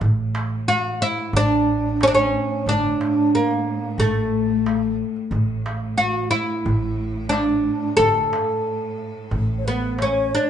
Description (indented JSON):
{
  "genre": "Turkish makam ensemble",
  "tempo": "90 BPM",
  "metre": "4/4",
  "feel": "straight",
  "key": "A makam hicaz",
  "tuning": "A4 = 440 Hz",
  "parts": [
    { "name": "upright bass", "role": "bass", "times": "0.0-10.3 s", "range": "G1 to A1", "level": "-26 LUFS", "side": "right 1 dB", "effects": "none" },
    { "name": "rich studio cello section", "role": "drone", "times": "0.0-10.5 s", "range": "A2", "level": "-32 LUFS", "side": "right 4 dB", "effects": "none" },
    { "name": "darbuka", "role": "percussion", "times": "0.0-10.5 s", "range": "none", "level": "-26 LUFS", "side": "right 1 dB", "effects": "none" },
    { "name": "oud", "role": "melody", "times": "0.7-10.5 s", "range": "A3 to A4", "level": "-20 LUFS", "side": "equal", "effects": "none" },
    { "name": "breathy mellow low ney", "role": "second line", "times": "9.6-10.5 s", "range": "B4 to C#5", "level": "-25 LUFS", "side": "left 6 dB", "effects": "none" }
  ],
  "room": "light reverb",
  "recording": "band playing live in one room, nothing above 10.4 kHz",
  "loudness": "-19 LUFS",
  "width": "side -9 dB against mid",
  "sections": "0.0-10.5 A section",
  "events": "none",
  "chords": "none",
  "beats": "| 0.01 0.67 1.33 2.00 | 2.66 3.33 3.99 4.66 | 5.32 5.99 6.65 7.32 | 7.98 8.65 9.31 9.98"
}